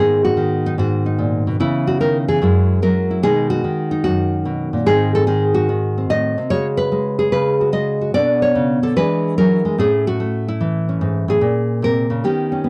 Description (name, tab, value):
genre	solo jazz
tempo	147 BPM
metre	4/4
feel	swing 68% on 8ths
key	G# minor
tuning	A4 = 440 Hz
part	nylon-string guitar	solo	0.0-12.7 s	F#2 to D#5	-18 LUFS	equal	none
room	little or no reverb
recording	dry, close 1970s-style studio recording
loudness	-18 LUFS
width	mono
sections	0.0-12.7 A section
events	none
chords	0.0 G#m7; 1.6 C#m9; 2.4 F#9; 3.2 B6; 4.9 G#7b9; 6.5 C#9sus4; 8.1 Bm9; 9.0 E7; 9.8 Amaj7; 11.4 A#m9